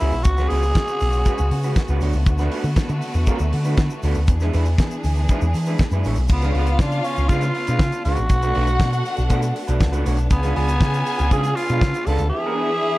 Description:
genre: disco.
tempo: 119 BPM.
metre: 4/4.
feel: straight.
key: unclear.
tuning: A4 = 439 Hz.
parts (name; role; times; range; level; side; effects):
growling tenor saxophone; melody; 0.0-2.0, 6.3-13.0 s; B3 to A4; -24 LUFS; equal; none.
electric guitar through a small old amp; accompaniment; 0.0-13.0 s; G#3 to C#5; -28 LUFS; right 2 dB; none.
clear studio string section; sustained chords; 0.0-13.0 s; C#3 to G#4; -30 LUFS; equal; none.
picked electric bass with an envelope filter; bass; 0.0-12.3 s; A1 to E3; -20 LUFS; equal; none.
damped 70s drum kit; drums; 0.0-12.3 s; crash cymbal, hi-hat, kick drum, snare drum; -21 LUFS; equal; none.
egg shaker; percussion; 0.0-12.3 s; none; -44 LUFS; left 4 dB; none.
warm studio violin section; second line; 6.3-13.0 s; E4 to G#5; -28 LUFS; left 1 dB; none.
room: little or no reverb.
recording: dark, warm production.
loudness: -17 LUFS.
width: side -18 dB against mid.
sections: 0.0-6.3 A section; 6.3-13.0 B section.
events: none.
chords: 0.0 C#7sus4; 2.0 D6; 4.3 E7; 6.3 C#7b9; 8.3 Bm7; 10.3 C#7b9; 12.3 E7.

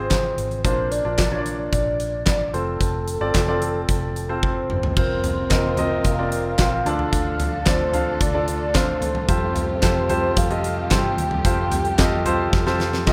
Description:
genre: piano-driven pop.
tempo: 111 BPM.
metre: 4/4.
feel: straight.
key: unclear.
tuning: A4 = 441 Hz.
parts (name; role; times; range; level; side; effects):
mellow horn-like synth lead; melody; 0.0-13.0 s; A4 to G5; -28 LUFS; equal; chorus.
clear baby grand piano; accompaniment; 0.0-13.1 s; Ab2 to F5; -27 LUFS; equal; none.
vintage muted fingered electric bass; bass; 0.0-13.1 s; F1 to G2; -30 LUFS; equal; none.
huge arena drum kit; drums; 0.1-13.1 s; crash cymbal, handclaps, hi-hat, kick drum, snare drum, toms; -25 LUFS; equal; none.
warm studio string section; sustained chords; 5.0-13.1 s; C3 to Bb4; -33 LUFS; equal; none.
room: moderate studio reverb, RT60 0.6 s.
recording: rough home demo mix.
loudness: -21 LUFS.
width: mono.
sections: 0.0-5.0 A section; 5.0-13.1 B section.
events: drum fill 4.4-5.0, 12.5-13.1.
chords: 0.0 Fm; 0.6 Bbadd9; 2.5 F; 5.0 Fsus4; 6.9 Dm; 9.3 Fadd9.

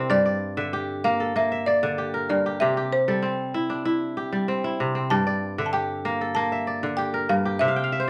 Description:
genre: west african traditional, West African string and xylophone music.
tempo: 96 BPM.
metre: 4/4.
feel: straight.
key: unclear.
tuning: A4 = 440 Hz.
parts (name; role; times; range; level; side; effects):
folk marimba with medium hard mallets; melody; 0.0-8.1 s; Bb4 to A5; -27 LUFS; equal; none.
kora; arpeggios; 0.0-8.1 s; G2 to G5; -26 LUFS; equal; none.
room: moderate large studio reverb, RT60 0.9 s.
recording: band playing live in one room.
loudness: -25 LUFS.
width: mono.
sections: 0.0-8.1 A section.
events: kora fill 7.6-8.1.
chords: 0.1 Gm; 2.6 C; 5.1 Gm.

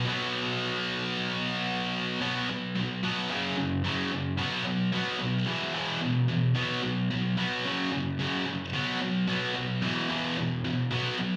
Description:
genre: rock.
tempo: 110 BPM.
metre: 4/4.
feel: straight.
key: unclear.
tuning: A4 = 439 Hz.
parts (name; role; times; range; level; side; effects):
high-gain distorted guitar; solo; 0.0-11.4 s; E2 to B3; -29 LUFS; equal; distortion, slapback echo.
room: moderate club reverb, RT60 0.7 s.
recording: live gig heard through the venue's PA, club ambience.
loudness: -29 LUFS.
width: mono.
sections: 0.0-2.2 A section; 2.2-11.4 B section.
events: none.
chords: 0.0 B5; 3.3 F#5; 4.4 B5; 5.5 E5; 6.6 B5; 7.6 F#5; 8.7 B5; 9.8 E5.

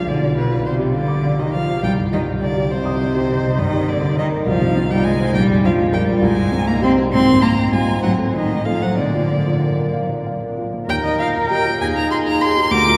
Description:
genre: quick classical-period movement for piano trio.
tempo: 62-69 BPM (dotted quarters).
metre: 6/8.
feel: rubato.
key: Eb major from 3.6 s.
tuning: A4 = 438 Hz.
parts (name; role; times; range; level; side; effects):
warm violin; melody; 0.0-13.0 s; B4 to D6; -26 LUFS; equal; none.
dark cello; second line; 0.0-13.0 s; B2 to Bb4; -21 LUFS; equal; none.
dark baby grand piano; accompaniment; 0.0-13.0 s; Bb1 to Eb6; -23 LUFS; equal; none.
room: wet cathedral reverb, RT60 6.8 s.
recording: heard from further back in the room.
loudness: -18 LUFS.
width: mono.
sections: 0.0-10.9 A section; 10.9-13.0 B section.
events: none.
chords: 0.1 G7/B; 1.8 Cm; 3.6 Eb/G; 4.5 Fm9/C; 5.4 Bb; 6.2 Cm; 7.1 Fm7/Ab; 8.0 Adim; 9.0 Bb; 10.9 Eb; 11.8 Ab5/Eb.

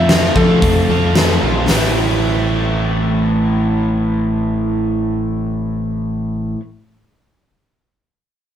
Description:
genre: classic rock.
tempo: 112 BPM.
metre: 4/4.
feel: straight.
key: A minor.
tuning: A4 = 440 Hz.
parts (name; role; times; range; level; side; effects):
electric slide guitar; melody; 0.0-1.4 s; A4 to E5; -18 LUFS; left 2 dB; none.
biting overdriven guitar; riff; 0.0-6.6 s; A2 to F4; -20 LUFS; right 5 dB; none.
overdriven electric guitar; riff; 0.0-6.6 s; A2 to A4; -21 LUFS; left 4 dB; none.
growling picked electric bass; bass; 0.0-6.5 s; A1 to F3; -19 LUFS; equal; overdrive.
huge arena drum kit; drums; 0.1-1.8 s; hi-hat, kick drum, snare drum; -16 LUFS; left 1 dB; none.
room: light reverb.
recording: band playing live in one room.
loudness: -14 LUFS.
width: side -9 dB against mid.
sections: 0.0-1.7 A section; 1.7-6.0 B section.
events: electric slide guitar solo 0.0-1.7.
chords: 0.0 F; 1.7 Am.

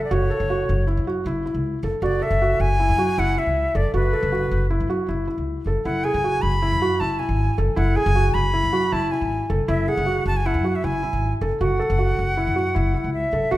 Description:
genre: contemporary instrumental, chamber music in an uneven meter.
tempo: 157 BPM.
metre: 5/4.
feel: straight.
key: F# minor.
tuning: A4 = 440 Hz.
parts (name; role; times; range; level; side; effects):
bright reedy concert flute; melody; 0.0-13.6 s; B4 to B5; -24 LUFS; equal; none.
felt-muted upright piano; arpeggios; 0.0-13.6 s; E4 to A4; -24 LUFS; right 1 dB; none.
upright bass; bass; 0.1-13.6 s; F#1 to F#2; -23 LUFS; equal; none.
room: moderate recital hall reverb, RT60 1.6 s.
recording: minimal, uncompressed stereo recording.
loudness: -19 LUFS.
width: side -15 dB against mid.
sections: 0.0-13.5 A section.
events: none.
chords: 0.0 F#m7; 5.9 F#9sus4; 11.6 F#m7.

